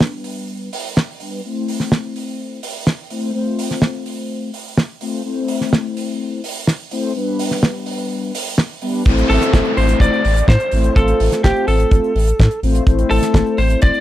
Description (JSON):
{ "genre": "italo disco", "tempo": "126 BPM", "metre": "4/4", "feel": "straight", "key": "A minor", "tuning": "A4 = 440 Hz", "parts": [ { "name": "mellow synth brass", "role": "stabs", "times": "0.0-14.0 s", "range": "G3 to C5", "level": "-21 LUFS", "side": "left 3 dB", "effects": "chorus" }, { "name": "damped 70s drum kit", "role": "drums", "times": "0.0-14.0 s", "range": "cabasa, crash cymbal, hi-hat, snare drum", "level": "-20 LUFS", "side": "right 1 dB", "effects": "none" }, { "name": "round analog bass", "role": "bass", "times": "9.1-13.9 s", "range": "A1 to A2", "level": "-16 LUFS", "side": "equal", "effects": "tube saturation" }, { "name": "kick drum", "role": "drums", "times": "9.1-13.9 s", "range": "none", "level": "-13 LUFS", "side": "equal", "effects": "none" }, { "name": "downlifter", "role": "sound effects", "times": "9.1-12.9 s", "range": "none", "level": "-25 LUFS", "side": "right 1 dB", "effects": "none" }, { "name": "lightly driven lead guitar", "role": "melody", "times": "9.3-14.0 s", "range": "G4 to D5", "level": "-18 LUFS", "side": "right 1 dB", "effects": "tape echo" } ], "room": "little or no reverb", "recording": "dry, close 1970s-style studio recording", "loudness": "-15 LUFS", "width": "side -13 dB against mid", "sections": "0.0-9.1 A section; 9.1-14.0 B section", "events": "filter sweep on analog polysynth 0.0-9.1", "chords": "0.0 G; 1.4 Am; 3.3 F/A; 5.2 Am; 7.2 G; 9.1 Am; 11.0 F/A; 12.9 Am" }